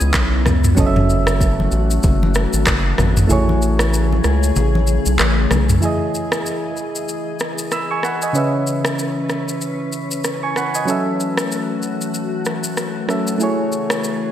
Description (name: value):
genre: afrobeats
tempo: 95 BPM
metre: 4/4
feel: swing 58% on 16ths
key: E major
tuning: A4 = 440 Hz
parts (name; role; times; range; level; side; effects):
- soft electric-piano-like synth keys; accompaniment; 0.0-14.3 s; C#3 to E6; -22 LUFS; right 2 dB; chorus
- glassy FM pad; sustained chords; 0.0-14.3 s; C#3 to D#5; -24 LUFS; left 4 dB; ensemble chorus, built-in reverb, sidechain pumping
- round analog bass; bass; 0.0-5.8 s; F#1 to C#2; -17 LUFS; equal; none
- afro-pop drum kit; drums; 0.0-14.2 s; handclaps, kick drum, rim click, shaker, toms; -21 LUFS; equal; gated reverb
- congas; percussion; 0.5-5.7 s; none; -25 LUFS; left 1 dB; none
room: moderate lush hall reverb, RT60 2.3 s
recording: bright 1980s-style digital production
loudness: -16 LUFS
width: side -11 dB against mid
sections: 0.0-5.8 A section; 5.8-14.3 B section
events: kick muted 3.3-5.8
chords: 0.0 C#m7; 0.8 F#m7; 3.3 Amaj7; 5.8 Emaj7; 8.4 C#m7; 10.9 F#m7; 13.4 Amaj7